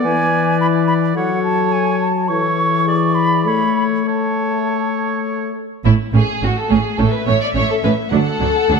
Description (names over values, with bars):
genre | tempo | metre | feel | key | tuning
quick classical-period movement for symphony orchestra | 103 BPM | 4/4 | uneven beats | A major | A4 = 440 Hz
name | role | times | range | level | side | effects
clear oboe | second line | 0.0-5.5 s | C#5 to D5 | -23 LUFS | right 4 dB | none
mellow clarinet | second line | 0.0-5.5 s | G#4 to B4 | -26 LUFS | left 2 dB | none
mellow silver concert flute | second line | 0.0-5.2 s | F#5 to C#6 | -20 LUFS | right 2 dB | none
dark French horn section | sustained chords | 0.0-5.6 s | E3 to A3 | -18 LUFS | left 7 dB | none
muted symphonic viola section | accompaniment | 5.8-8.8 s | F#3 to D4 | -23 LUFS | right 2 dB | none
muted chamber cello section | bass | 5.8-8.8 s | D2 to A2 | -20 LUFS | right 4 dB | none
muted chamber double bass section | bass | 5.8-8.8 s | A1 to D2 | -18 LUFS | right 5 dB | none
muted chamber violin section | second line | 5.9-8.8 s | E4 to D5 | -19 LUFS | left 2 dB | none
muted chamber violin section | melody | 7.0-8.8 s | E5 to F#5 | -26 LUFS | left 4 dB | none
room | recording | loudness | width
wet scoring stage reverb, RT60 1.6 s | none | -14 LUFS | side -5 dB against mid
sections
0.0-5.8 A section; 5.8-8.8 B section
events
none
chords
0.0 E7; 1.2 F#m; 2.3 A/E; 3.5 A; 8.1 D